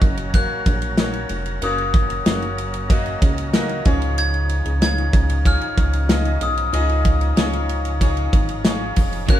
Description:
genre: piano-driven pop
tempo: 94 BPM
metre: 4/4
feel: straight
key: unclear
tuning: A4 = 444 Hz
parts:
  - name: glockenspiel with hard plastic mallets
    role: melody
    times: 0.0-9.4 s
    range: D#6 to G#6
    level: -26 LUFS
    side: left 4 dB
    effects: none
  - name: bright grand piano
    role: accompaniment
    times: 0.0-9.4 s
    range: G#2 to D#5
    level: -26 LUFS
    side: left 2 dB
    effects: none
  - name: percussive tonewheel organ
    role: sustained chords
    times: 0.0-9.4 s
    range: E#3 to A#4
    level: -33 LUFS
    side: right 2 dB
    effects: overdrive, fast rotary speaker
  - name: chorused synth bass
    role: bass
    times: 0.0-9.4 s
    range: E#1 to C#2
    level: -22 LUFS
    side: equal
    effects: none
  - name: modern studio drum kit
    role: drums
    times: 0.0-9.4 s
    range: hi-hat, kick drum, ride cymbal, snare drum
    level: -19 LUFS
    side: equal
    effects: none
  - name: overdriven electric guitar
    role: riff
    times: 9.3-9.4 s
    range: F#3 to C#5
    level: -29 LUFS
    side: right 4 dB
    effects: none
room: moderate studio reverb, RT60 0.7 s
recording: band playing live in one room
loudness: -17 LUFS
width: side -12 dB against mid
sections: 0.0-9.4 A section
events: none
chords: 0.0 F#; 3.9 C#add9

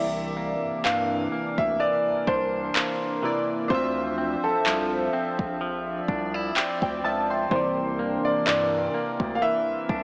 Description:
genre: contemporary R&B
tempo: 63 BPM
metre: 4/4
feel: swing 54% on 16ths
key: unclear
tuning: A4 = 441 Hz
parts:
  - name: clear grand piano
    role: melody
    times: 0.0-10.0 s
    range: A4 to F5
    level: -29 LUFS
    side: equal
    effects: tape echo
  - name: warm analog keys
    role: accompaniment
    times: 0.0-10.0 s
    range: C3 to C6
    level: -32 LUFS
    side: equal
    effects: chorus
  - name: hollow soft pad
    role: sustained chords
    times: 0.3-10.0 s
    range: E3 to E5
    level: -36 LUFS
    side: equal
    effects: chorus, sidechain pumping
  - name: clean electric guitar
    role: arpeggios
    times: 0.0-10.0 s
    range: C3 to E4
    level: -34 LUFS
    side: equal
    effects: tape echo
  - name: round analog bass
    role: bass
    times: 0.0-10.0 s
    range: Bb1 to G2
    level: -38 LUFS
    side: equal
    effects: none
  - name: smooth R&B drum kit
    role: drums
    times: 0.9-10.0 s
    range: handclaps, kick drum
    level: -31 LUFS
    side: equal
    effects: none
room: light reverb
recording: small speaker sound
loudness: -26 LUFS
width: mono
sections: 0.0-10.0 A section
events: break 0.0-10.0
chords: 0.0 C9; 3.7 Dm9; 7.5 C9

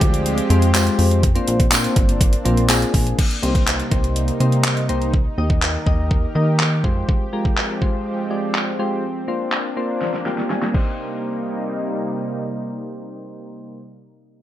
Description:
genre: dance-pop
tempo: 123 BPM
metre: 4/4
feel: straight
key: C minor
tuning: A4 = 441 Hz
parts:
  - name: soft electric-piano-like synth keys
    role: accompaniment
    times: 0.0-13.8 s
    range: Ab3 to Ab5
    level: -24 LUFS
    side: left 2 dB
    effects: chorus, sidechain pumping
  - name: lush unison pad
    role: sustained chords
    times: 0.0-13.8 s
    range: C3 to Bb4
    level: -26 LUFS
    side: right 1 dB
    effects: chorus, sidechain pumping
  - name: plucky analog bass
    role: bass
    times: 0.0-7.0 s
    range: G1 to Eb3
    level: -19 LUFS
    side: equal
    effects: sidechain pumping
  - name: pop drum kit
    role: drums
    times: 0.0-10.9 s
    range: crash cymbal, handclaps, hi-hat, kick drum, snare drum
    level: -19 LUFS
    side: equal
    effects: overdrive
  - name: tambourine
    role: percussion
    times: 0.7-2.8 s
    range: none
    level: -28 LUFS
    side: right 4 dB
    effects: none
room: light reverb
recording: bright 1980s-style digital production, low-pass filter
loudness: -17 LUFS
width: side -12 dB against mid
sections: 0.0-3.2 A section; 3.2-11.0 B section; 11.0-14.4 C section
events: drop 0.0-3.2; filter sweep 3.2-11.0; drum fill 10.0-11.0; synth keys fill 10.0-11.0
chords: 0.0 Fmadd9; 1.2 Bbadd9; 3.2 Cm7; 6.8 Fmadd9; 9.0 Bbadd9; 10.7 Cm7

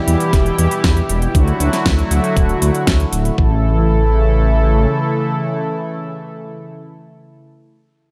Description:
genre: synthwave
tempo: 118 BPM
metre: 4/4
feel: straight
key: unclear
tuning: A4 = 439 Hz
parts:
  - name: chorused pulse-width pad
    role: sustained chords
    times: 0.0-7.5 s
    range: B2 to A4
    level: -21 LUFS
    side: equal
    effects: vintage 12-bit sampler grit, sidechain pumping
  - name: dark detuned saw bass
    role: bass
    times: 0.1-4.9 s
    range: D1 to E2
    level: -18 LUFS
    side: equal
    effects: none
  - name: pop drum kit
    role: drums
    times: 0.1-3.4 s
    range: hi-hat, snare drum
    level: -24 LUFS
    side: equal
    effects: none
  - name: electronic kick drum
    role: drums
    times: 0.3-3.5 s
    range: none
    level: -18 LUFS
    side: equal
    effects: none
room: light reverb, digital ambience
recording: none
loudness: -16 LUFS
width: mono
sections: 0.0-3.4 A section; 3.4-7.4 B section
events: none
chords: 0.0 Em; 1.3 Dadd9; 3.4 A

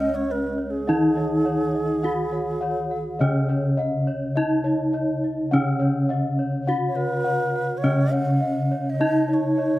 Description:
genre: gamelan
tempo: 52 BPM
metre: 4/4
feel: straight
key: Db slendro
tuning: A4 = 439 Hz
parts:
  - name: gamelan-type bronze metallophone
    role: melody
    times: 0.0-9.8 s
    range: Db4 to Gb4-35c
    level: -25 LUFS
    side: equal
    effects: none
  - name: breathy xiao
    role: second line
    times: 0.0-9.8 s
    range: Ab4+32c to Gb5-39c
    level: -28 LUFS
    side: right 3 dB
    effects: none
  - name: gamelan-type bronze metallophone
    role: accompaniment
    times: 0.0-9.8 s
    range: Db3 to Ab3+25c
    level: -27 LUFS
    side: equal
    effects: none
  - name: gamelan-type bossed gongs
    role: arpeggios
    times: 0.0-9.8 s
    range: Db5 to Gb5-35c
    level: -29 LUFS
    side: left 4 dB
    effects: slapback echo
  - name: gamelan-type bronze metallophone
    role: arpeggios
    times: 0.0-9.8 s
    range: Db5 to Gb5-35c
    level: -35 LUFS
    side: right 2 dB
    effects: slapback echo
  - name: gamelan-type bossed gongs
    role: bass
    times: 0.0-9.8 s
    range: Db2 to Eb4+30c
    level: -28 LUFS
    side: equal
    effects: none
room: little or no reverb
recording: recorded outdoors, with no room sound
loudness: -20 LUFS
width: side -16 dB against mid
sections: 0.0-9.8 A section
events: none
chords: none

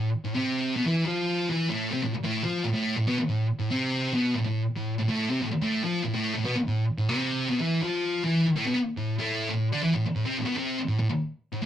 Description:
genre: rock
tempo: 142 BPM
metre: 4/4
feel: straight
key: A minor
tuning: A4 = 440 Hz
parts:
  - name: thick fuzz guitar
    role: solo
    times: 0.0-11.7 s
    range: A2 to F4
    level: -25 LUFS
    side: equal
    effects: distortion
room: moderate studio reverb, RT60 0.5 s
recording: rough rehearsal-room recording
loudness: -25 LUFS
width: side -10 dB against mid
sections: 0.0-8.5 A section; 8.5-11.7 B section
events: none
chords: 0.0 Am

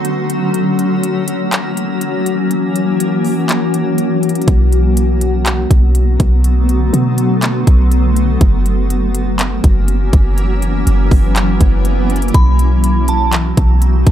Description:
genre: hip hop, atmospheric cloud-rap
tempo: 122 BPM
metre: 4/4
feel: half-time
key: B minor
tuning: A4 = 445 Hz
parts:
  - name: granular cloud pad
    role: sustained chords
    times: 0.0-14.1 s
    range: D3 to F#4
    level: -16 LUFS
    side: left 1 dB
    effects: built-in reverb, sidechain pumping
  - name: trap drum kit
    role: drums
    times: 0.0-14.1 s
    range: handclaps, hi-hat, kick drum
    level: -14 LUFS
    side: equal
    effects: none
  - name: clean 808-style bass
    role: bass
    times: 4.5-14.1 s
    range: F#1 to B2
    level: -13 LUFS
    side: equal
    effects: none
  - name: swell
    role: sound effects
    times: 10.7-12.3 s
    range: none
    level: -25 LUFS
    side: right 5 dB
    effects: none
  - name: glassy synth bell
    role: melody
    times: 12.3-13.3 s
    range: A5 to B5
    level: -20 LUFS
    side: right 3 dB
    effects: chorus, phaser, low-pass filter, tape echo
room: little or no reverb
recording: dry, gritty hardware recording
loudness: -11 LUFS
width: side -10 dB against mid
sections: 0.0-12.3 A section; 12.3-14.1 B section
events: break 0.0-4.5; swell 10.7-12.3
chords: 0.0 Bm7 (rootless); 0.5 F#7; 4.5 Bm7; 8.4 F#7; 12.3 Bm7

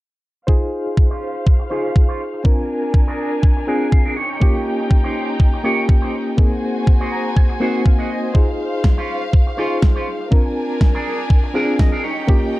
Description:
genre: nu-disco, nu disco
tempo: 122 BPM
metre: 4/4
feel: swing 54% on 16ths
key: Db major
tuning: A4 = 440 Hz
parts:
  - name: reed electric piano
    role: accompaniment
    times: 0.5-12.6 s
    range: Bb3 to C5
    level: -22 LUFS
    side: left 1 dB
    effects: fast tremolo, sidechain pumping, analog delay
  - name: warm studio violin section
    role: sustained chords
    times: 0.5-12.6 s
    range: Db4 to Ab5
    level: -27 LUFS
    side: equal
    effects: sidechain pumping, low-pass filter
  - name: electronic kick drum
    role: drums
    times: 0.5-12.4 s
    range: none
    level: -14 LUFS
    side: equal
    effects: none
  - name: electric guitar with an envelope filter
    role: riff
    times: 0.9-12.5 s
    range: Db4 to Bb5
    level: -26 LUFS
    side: right 2 dB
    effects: lush chorus, low-pass filter, analog delay
  - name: electronic snare drum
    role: drums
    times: 8.8-11.9 s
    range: none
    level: -26 LUFS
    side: equal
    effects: overdrive
room: digital ambience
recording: dark, warm production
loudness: -15 LUFS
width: side -18 dB against mid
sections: 0.5-12.6 A section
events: filter sweep on clean electric guitar 0.5-12.6; filter sweep on violin section 0.5-12.6; clean electric guitar fill 3.7-4.4, 6.9-8.4, 11.3-12.3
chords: 0.5 Dbmaj7; 2.4 Bb7; 4.2 Eb7; 6.4 Ab7; 8.4 Dbmaj7; 10.3 Bb7; 12.0 Eb7

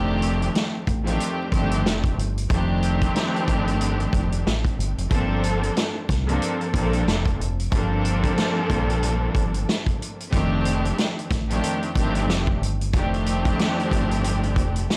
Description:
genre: hip hop, boom-bap hip-hop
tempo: 92 BPM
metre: 4/4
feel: swing 59% on 16ths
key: unclear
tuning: A4 = 440 Hz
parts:
  - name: rich studio string section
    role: accompaniment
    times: 0.0-15.0 s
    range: F2 to A4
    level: -27 LUFS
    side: equal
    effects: cassette tape, high-pass filter, low-pass filter
  - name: deep dub fingered electric bass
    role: bass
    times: 0.0-14.9 s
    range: F1 to C2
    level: -27 LUFS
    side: equal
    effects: none
  - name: vintage drum kit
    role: drums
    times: 0.2-15.0 s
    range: hi-hat, kick drum, snare drum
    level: -28 LUFS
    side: equal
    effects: none
room: small room reverb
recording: dry, gritty hardware recording, vinyl crackle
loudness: -23 LUFS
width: mono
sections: 0.0-15.0 A section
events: none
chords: 0.0 F13; 5.1 Gm11; 10.3 F13

